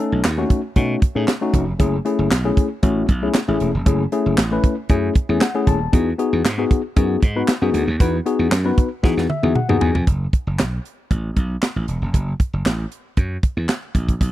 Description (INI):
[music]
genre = early-eighties boogie funk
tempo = 116 BPM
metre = 4/4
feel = straight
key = F# dorian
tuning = A4 = 440 Hz
[part]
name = tine electric piano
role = accompaniment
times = 0.0-10.1 s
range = A3 to A5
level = -20 LUFS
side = left 4 dB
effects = none
[part]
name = slap bass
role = bass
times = 0.1-14.3 s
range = D#1 to E3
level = -21 LUFS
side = right 1 dB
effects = none
[part]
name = tight funk drum kit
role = drums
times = 0.2-14.3 s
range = handclaps, hi-hat, kick drum, snare drum, toms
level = -18 LUFS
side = right 1 dB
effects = none
[sound]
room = small room ambience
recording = dry, close 1970s-style studio recording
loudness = -17 LUFS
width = side -14 dB against mid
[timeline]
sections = 0.0-10.1 A section; 10.1-14.3 B section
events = tine electric piano fill 5.2-5.9, 9.0-10.1; drum fill 9.0-10.1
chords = 0.0 B7; 1.8 F#m9; 5.9 Emaj9; 10.1 F#m